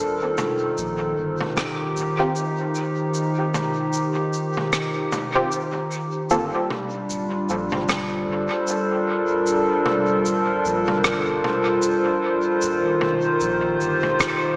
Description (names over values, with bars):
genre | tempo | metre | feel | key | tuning
ambient dub | 76 BPM | 4/4 | swing 58% on 16ths | G minor | A4 = 440 Hz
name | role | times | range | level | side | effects
warbly tape-like pad | sustained chords | 0.0-14.6 s | Eb3 to C5 | -21 LUFS | equal | chorus, built-in reverb
soft dub sub bass | bass | 0.0-14.6 s | D1 to Bb1 | -35 LUFS | equal | none
open jazz drum kit | drums | 0.4-14.4 s | rim click, shaker, toms | -28 LUFS | equal | dub echo
electronic kick drum | drums | 1.6-1.8, 7.9-14.4 s | none | -33 LUFS | equal | none
filtered dub chord stab | stabs | 2.2-6.6 s | Bb3 to A4 | -25 LUFS | equal | chorus, dub echo
room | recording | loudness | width
wet lush hall reverb, RT60 2.4 s | dreamy mix soaked in reverb, small speaker sound | -20 LUFS | side -28 dB against mid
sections
0.0-6.3 A section; 6.3-14.6 B section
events
none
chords
0.0 Eb69; 6.3 Gm11; 12.6 Eb69